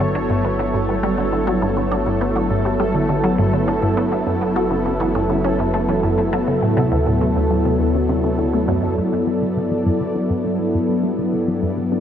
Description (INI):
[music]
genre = ambient, sequencer-driven space music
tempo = 102 BPM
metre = 4/4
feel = straight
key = D major, G major from 9.0 s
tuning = A4 = 440 Hz
[part]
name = sweeping resonant pad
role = sustained chords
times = 0.0-12.0 s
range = G2 to D5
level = -19 LUFS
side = equal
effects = chorus, shimmer reverb
[part]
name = resonant blip pluck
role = riff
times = 0.0-12.0 s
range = D2 to D4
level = -22 LUFS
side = equal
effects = phaser, wide subtle chorus, tape echo
[part]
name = warm sub bass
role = bass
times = 0.0-8.9 s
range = F#1 to D2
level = -27 LUFS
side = equal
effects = none
[part]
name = bubbling stepped-filter texture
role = texture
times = 0.0-12.0 s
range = A3 to D5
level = -30 LUFS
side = equal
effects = chorus, built-in reverb, shimmer reverb
[sound]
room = wet lush hall reverb, RT60 2.7 s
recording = none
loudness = -17 LUFS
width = side -9 dB against mid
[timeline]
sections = 0.0-9.0 A section; 9.0-12.0 B section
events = filter sweep on synth arpeggio sound 9.0-12.0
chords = 0.0 G; 4.3 F#m7; 6.6 D7; 9.0 G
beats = 0.15 0.74 1.33 | 1.92 2.51 3.09 3.68 | 4.27 4.86 5.45 6.04 | 6.62 7.21 7.80 8.39 | 8.98 9.56 10.15 10.74 | 11.33 11.92